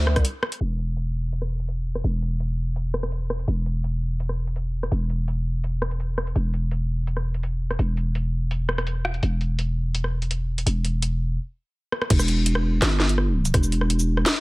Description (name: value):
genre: half-time drum and bass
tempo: 167 BPM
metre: 4/4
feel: half-time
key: E minor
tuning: A4 = 440 Hz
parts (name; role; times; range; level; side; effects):
- growling 808-style bass; bass; 0.0-14.2 s; E1 to D2; -23 LUFS; equal; tube saturation
- drum and bass drum kit; drums; 0.1-14.3 s; crash cymbal, hi-hat, rim click, shaker, snare drum; -26 LUFS; equal; none
- electronic kick drum; drums; 0.2, 12.1-13.6 s; none; -21 LUFS; equal; none
room: little or no reverb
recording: low-pass filter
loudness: -22 LUFS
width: side -23 dB against mid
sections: 0.6-12.1 A section; 12.1-14.4 B section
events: break 0.2-0.6; filter sweep 0.6-12.1; stop 11.4-12.1; drum fill 11.9; drop 12.1-14.4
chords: none